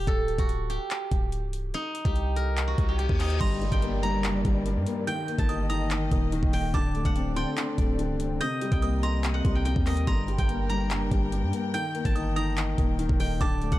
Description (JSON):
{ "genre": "hip hop, trap", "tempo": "144 BPM", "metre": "4/4", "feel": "half-time", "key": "G minor", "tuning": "A4 = 440 Hz", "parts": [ { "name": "steel-string zither", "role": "melody", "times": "0.0-13.8 s", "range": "Eb4 to Bb5", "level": "-33 LUFS", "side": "right 1 dB", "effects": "low-pass filter" }, { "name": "warm 808-style bass", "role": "bass", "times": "0.0-13.8 s", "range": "C1 to G2", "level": "-28 LUFS", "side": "equal", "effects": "none" }, { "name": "trap drum kit", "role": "drums", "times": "0.1-13.8 s", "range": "crash cymbal, handclaps, hi-hat, kick drum", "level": "-28 LUFS", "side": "equal", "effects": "none" }, { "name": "reverse cymbal and downlifter", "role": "sound effects", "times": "2.8-6.7 s", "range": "none", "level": "-41 LUFS", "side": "left 1 dB", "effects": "none" }, { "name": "delicate synth tine bell", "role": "second line", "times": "3.4-13.8 s", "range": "Bb5 to G6", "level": "-37 LUFS", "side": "right 3 dB", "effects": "chorus, digital delay" }, { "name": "dark concert grand piano", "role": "accompaniment", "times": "3.4-13.8 s", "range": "G2 to Eb4", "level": "-30 LUFS", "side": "left 3 dB", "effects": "low-pass filter" }, { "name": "warm studio string section", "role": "sustained chords", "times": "3.4-13.8 s", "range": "C3 to G5", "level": "-37 LUFS", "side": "equal", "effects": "none" } ], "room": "little or no reverb", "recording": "dark, warm production", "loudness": "-24 LUFS", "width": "side -15 dB against mid", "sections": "0.0-3.4 A section; 3.4-13.8 B section", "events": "reverse cymbal 2.8-3.4", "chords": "0.1 D7sus4; 1.7 Cm; 3.4 Gm; 5.1 Eb; 6.7 D7sus4; 8.4 Cm7; 10.1 Gm; 11.7 Eb", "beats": "| 0.07 0.49 0.91 1.32 | 1.74 2.16 2.57 2.99 | 3.41 3.82 4.24 4.66 | 5.07 5.49 5.91 6.32 | 6.74 7.16 7.57 7.99 | 8.41 8.82 9.24 9.66 | 10.07 10.49 10.91 11.32 | 11.74 12.16 12.57 12.99 | 13.41" }